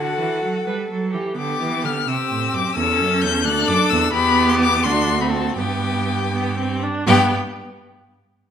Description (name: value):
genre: quick classical-period movement for string quartet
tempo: 80-88 BPM (dotted quarters)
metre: 6/8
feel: straight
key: G major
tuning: A4 = 441 Hz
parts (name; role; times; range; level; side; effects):
- warm violin; melody; 0.0-7.3 s; F#5 to G6; -21 LUFS; left 8 dB; none
- rich violin; second line; 0.0-7.3 s; F#4 to A4; -25 LUFS; left 2 dB; none
- rich viola; accompaniment; 0.0-7.3 s; B3 to B4; -23 LUFS; right 2 dB; none
- rich cello; bass; 0.0-7.3 s; D2 to G3; -23 LUFS; right 4 dB; none
room: moderate recital hall reverb, RT60 1.3 s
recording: none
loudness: -17 LUFS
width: side -8 dB against mid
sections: 0.0-7.1 A section; 7.1-8.5 B section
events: none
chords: 0.0 D; 1.4 G/D; 2.1 C; 2.8 A/E; 3.5 D; 4.1 Em; 4.9 D7; 5.6 G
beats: 0.67 | 1.38 2.08 | 2.78 3.46 | 4.15 4.85 | 5.58 6.33 | 7.08